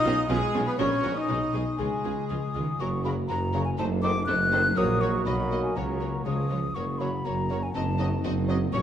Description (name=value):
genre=cinematic, playful, whimsical film cue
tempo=121 BPM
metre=2/4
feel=straight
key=F# major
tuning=A4 = 440 Hz
part: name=glockenspiel with rubber mallets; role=melody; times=0.0-2.5 s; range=G#5 to D#6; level=-37 LUFS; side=left 3 dB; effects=none
part: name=dark clarinet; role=second line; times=0.0-8.6 s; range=G#4 to D#5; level=-37 LUFS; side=left 1 dB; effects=none
part: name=mellow cor anglais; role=second line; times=0.0-8.6 s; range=G#3 to D#5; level=-37 LUFS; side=right 2 dB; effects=none
part: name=mellow hollow concert flute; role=second line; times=0.0-8.8 s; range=G#5 to F#6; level=-30 LUFS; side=left 2 dB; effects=none
part: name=warm studio violin section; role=second line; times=0.0-8.8 s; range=D#4 to D#5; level=-40 LUFS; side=equal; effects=none
part: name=rich studio viola section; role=accompaniment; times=0.0-8.8 s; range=F#3 to F#4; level=-36 LUFS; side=right 2 dB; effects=none
part: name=mellow French horn section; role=sustained chords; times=0.0-8.8 s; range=G#3 to F#4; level=-33 LUFS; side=left 1 dB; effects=none
part: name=concert harp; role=arpeggios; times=0.0-8.8 s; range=F#2 to B5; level=-34 LUFS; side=left 6 dB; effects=none
part: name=rich studio violin section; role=melody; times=0.1-8.8 s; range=G#4 to D#5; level=-41 LUFS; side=left 3 dB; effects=none
part: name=dark studio double bass section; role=bass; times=0.1-8.8 s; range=F#1 to C#2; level=-34 LUFS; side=right 3 dB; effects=none
part: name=mellow tuba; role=bass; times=0.1-8.8 s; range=F#1 to C#2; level=-34 LUFS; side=right 4 dB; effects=none
part: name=warm studio cello section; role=bass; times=0.1-8.8 s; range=F#2 to G#3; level=-34 LUFS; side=right 2 dB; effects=none
part: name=warm bassoon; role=accompaniment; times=3.0-8.6 s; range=C#3 to F#3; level=-36 LUFS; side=right 3 dB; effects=none
room=wet scoring stage reverb, RT60 1.9 s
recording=dark, warm production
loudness=-24 LUFS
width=side -10 dB against mid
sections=0.0-2.8 A section; 2.8-8.8 B section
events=none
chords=0.0 C#7/B; 0.8 F#/A#; 1.3 G#m/B; 1.8 C#; 2.8 F#; 3.8 F#dim7; 4.8 F#/A#; 5.3 Bmaj7; 5.8 F#/C#; 6.3 C#; 6.8 F#; 7.8 F#dim7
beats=0.29 | 0.79 1.28 | 1.79 2.29 | 2.80 3.29 | 3.79 4.28 | 4.77 5.26 | 5.76 6.26 | 6.76 7.26 | 7.75 8.24 | 8.73